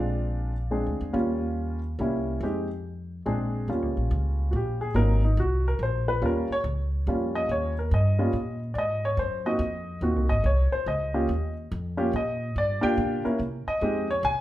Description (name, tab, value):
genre	jazz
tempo	142 BPM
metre	3/4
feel	swing 66% on 8ths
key	Eb mixolydian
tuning	A4 = 441 Hz
part	warm baby grand piano	melody	0.0-14.4 s	Gb3 to Ab5	-27 LUFS	equal	none
part	upright bass	bass	0.0-14.4 s	Ab1 to C3	-27 LUFS	equal	none
room	moderate large studio reverb, RT60 0.9 s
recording	band playing live in one room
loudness	-24 LUFS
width	side -14 dB against mid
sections	0.0-3.7 A section; 3.7-14.4 B section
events	grand piano solo 3.7-14.4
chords	0.0 Bb7; 1.1 Eb7; 2.0 C7b9; 2.4 Fm7; 3.3 Bb7; 3.7 Eb7 (rootless); 4.9 Ab7; 6.2 Eb7; 8.8 Ab7; 11.3 Eb5; 12.6 Gm7; 13.4 Cm; 13.8 Fm7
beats	0.30 0.72 | 1.14 1.56 1.99 | 2.41 2.83 3.25 | 3.68 4.10 4.52 | 4.95 5.37 5.79 | 6.21 6.64 7.06 | 7.48 7.91 8.33 | 8.75 9.17 9.60 | 10.02 10.44 10.86 | 11.29 11.71 12.13 | 12.55 12.97 13.39 | 13.82 14.24